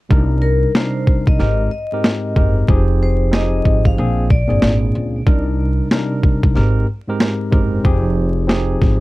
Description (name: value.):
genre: hip hop, boom-bap hip-hop.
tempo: 93 BPM.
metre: 4/4.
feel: swing 61% on 16ths.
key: C minor.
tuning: A4 = 440 Hz.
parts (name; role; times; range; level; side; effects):
tine electric piano; accompaniment; 0.1-9.0 s; Ab2 to Bb4; -20 LUFS; equal; slow stereo tremolo, cassette tape.
upright bass; bass; 0.1-9.0 s; F1 to Db2; -17 LUFS; equal; none.
boom bap sampler-style drum kit; drums; 0.1-9.0 s; kick drum, snare drum; -14 LUFS; equal; vintage 12-bit sampler grit.
vibraphone with medium hard mallets; melody; 0.4-4.8 s; Bb4 to F5; -24 LUFS; left 3 dB; tape echo.
room: little or no reverb.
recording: dark, warm production, vinyl crackle.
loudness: -14 LUFS.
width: side -19 dB against mid.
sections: 0.1-9.0 A section.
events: hi-hats muted 0.1-9.0.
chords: 0.1 Cm7; 1.4 Abmaj7; 2.7 Fm7; 4.0 Bb7; 5.3 Cm7; 6.6 Abmaj7; 7.8 Fm7.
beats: | 0.11 0.75 1.40 2.04 | 2.69 3.33 3.98 4.62 | 5.27 5.91 6.56 7.20 | 7.85 8.49.